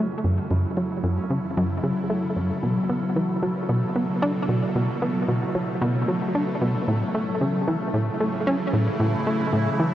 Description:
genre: ambient, sequencer-driven space music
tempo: 113 BPM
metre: 4/4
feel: straight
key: unclear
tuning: A4 = 442 Hz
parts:
  - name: evolving wavetable pad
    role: sustained chords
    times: 0.1-9.9 s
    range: B2 to A4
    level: -31 LUFS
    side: equal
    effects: phaser, built-in reverb
  - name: concert harp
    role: arpeggios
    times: 0.0-9.9 s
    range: C#3 to F#4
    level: -27 LUFS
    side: equal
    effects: auto-pan, tape echo
  - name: plucky analog bass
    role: riff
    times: 0.0-9.9 s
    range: F#2 to D4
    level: -24 LUFS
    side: equal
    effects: tape echo
room: moderate huge ambient reverb, RT60 8.4 s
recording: worn, warbling old tape, cassette tape, warbly pitch drift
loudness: -22 LUFS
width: side -12 dB against mid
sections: 0.0-9.9 A section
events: fade-in on ambient pad 0.0-9.9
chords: 0.0 F#m7; 2.6 B7(no3); 6.9 A

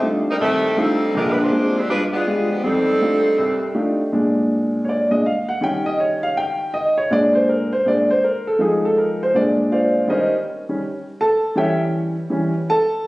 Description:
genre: jazz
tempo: 161 BPM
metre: 4/4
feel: swing 66% on 8ths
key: Bb major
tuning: A4 = 440 Hz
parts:
  - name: warm saxophone section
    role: melody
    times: 0.0-3.7 s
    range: Eb3 to C5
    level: -19 LUFS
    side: equal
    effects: none
  - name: warm upright piano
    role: accompaniment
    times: 0.0-13.0 s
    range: Bb1 to A5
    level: -17 LUFS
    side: equal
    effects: none
room: wet recital hall reverb, RT60 1.4 s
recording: recorded on a phone in the room, studio reverb, compression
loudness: -16 LUFS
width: side -20 dB against mid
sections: 0.0-4.1 A section; 4.1-13.1 B section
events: upright piano solo 4.1-13.1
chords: 0.0 F13; 1.2 Bb13; 1.9 G7b9; 2.6 F13; 4.1 Bb7; 5.6 Eb7; 7.1 Bb7; 8.6 Fm7; 9.3 Bb9; 10.1 Eb6; 11.6 A7/E

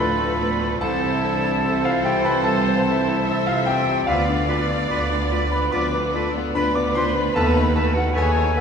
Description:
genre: classical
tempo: 74 BPM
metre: 4/4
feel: rubato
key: unclear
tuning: A4 = 440 Hz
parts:
  - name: bright grand piano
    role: melody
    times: 0.0-8.6 s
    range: C2 to D6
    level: -23 LUFS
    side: left 2 dB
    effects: none
  - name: rich symphonic violin section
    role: melody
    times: 0.0-8.6 s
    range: A4 to D5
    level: -33 LUFS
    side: left 4 dB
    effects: none
  - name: bright oboe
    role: second line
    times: 0.0-8.6 s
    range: A4 to B4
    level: -30 LUFS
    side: right 3 dB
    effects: none
  - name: bright silver concert flute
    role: second line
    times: 0.0-8.6 s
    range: F5 to D6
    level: -29 LUFS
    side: equal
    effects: none
  - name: clear clarinet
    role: second line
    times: 0.0-8.6 s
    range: E4 to A4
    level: -31 LUFS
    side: equal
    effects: none
  - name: rich symphonic violin section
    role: second line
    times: 0.0-8.6 s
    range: A3 to F#4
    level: -31 LUFS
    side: left 2 dB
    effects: none
  - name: rich studio viola section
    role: accompaniment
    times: 0.0-8.6 s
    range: A4 to E5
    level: -28 LUFS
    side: right 2 dB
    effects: none
  - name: dark French horn section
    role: sustained chords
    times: 0.0-7.6 s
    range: E3 to D4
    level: -28 LUFS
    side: equal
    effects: none
  - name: rich symphonic cello section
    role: bass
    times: 0.0-8.6 s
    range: C2 to D#2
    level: -27 LUFS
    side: right 2 dB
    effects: none
  - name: rich symphonic double bass section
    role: bass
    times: 0.0-8.6 s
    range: C2 to D#2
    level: -29 LUFS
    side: right 2 dB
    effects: none
room: wet scoring stage reverb, RT60 1.8 s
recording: minimal, uncompressed stereo recording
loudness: -18 LUFS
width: side -6 dB against mid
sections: 0.0-8.6 A section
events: none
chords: 0.0 Dm; 0.8 Am/C; 4.1 Bdim/D; 7.4 B7/D#

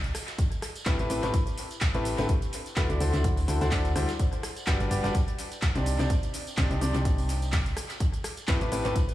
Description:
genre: piano house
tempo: 126 BPM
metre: 4/4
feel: swing 55% on 16ths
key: unclear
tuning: A4 = 441 Hz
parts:
  - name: clear baby grand piano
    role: riff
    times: 0.0-8.9 s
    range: A2 to Eb5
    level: -31 LUFS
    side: left 1 dB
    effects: sidechain pumping, tape echo
  - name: solid FM bass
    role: bass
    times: 0.0-8.9 s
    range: G1 to D2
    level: -28 LUFS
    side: equal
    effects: sidechain pumping
  - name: house drum kit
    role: drums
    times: 0.0-9.1 s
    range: cabasa, handclaps, hi-hat, rim click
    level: -35 LUFS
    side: equal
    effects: tape echo
  - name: tambourine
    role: percussion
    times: 0.0-9.1 s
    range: none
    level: -47 LUFS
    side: right 5 dB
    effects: none
  - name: breakbeat sampler-style drum kit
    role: drums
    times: 0.1-9.1 s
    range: hi-hat, snare drum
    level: -45 LUFS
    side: equal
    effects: none
  - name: electronic kick drum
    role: drums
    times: 0.4-9.1 s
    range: none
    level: -27 LUFS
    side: equal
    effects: none
room: digital ambience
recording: echo-heavy mix, small room reverb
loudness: -25 LUFS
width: side -14 dB against mid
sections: 0.0-9.1 A section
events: none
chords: 0.1 Am9; 2.3 D9; 4.2 Gmaj7; 5.9 Cmadd9; 7.8 Am9

